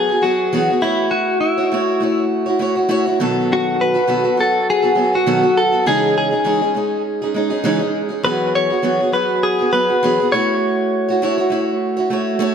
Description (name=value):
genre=pop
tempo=101 BPM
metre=4/4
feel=swing 55% on 16ths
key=E major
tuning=A4 = 440 Hz
part: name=direct-recorded clean electric guitar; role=melody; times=0.0-11.5 s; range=E4 to C#5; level=-18 LUFS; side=left 2 dB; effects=lush chorus, analog delay
part: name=picked steel-string acoustic guitar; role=accompaniment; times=0.0-12.5 s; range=B2 to C#5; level=-17 LUFS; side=right 1 dB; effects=analog delay
room=wet echo chamber reverb, RT60 1.7 s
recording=echo-heavy mix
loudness=-15 LUFS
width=side -7 dB against mid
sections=0.0-12.5 A section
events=none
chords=0.0 Eadd9; 0.8 A6; 3.2 B7; 5.9 C#madd9; 8.2 Eadd9; 10.3 A6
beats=0.53 | 1.12 1.71 2.31 2.90 | 3.49 4.09 4.68 5.27 | 5.87 6.46 7.05 7.65 | 8.24 8.83 9.43 10.02 | 10.62 11.21 11.80 12.40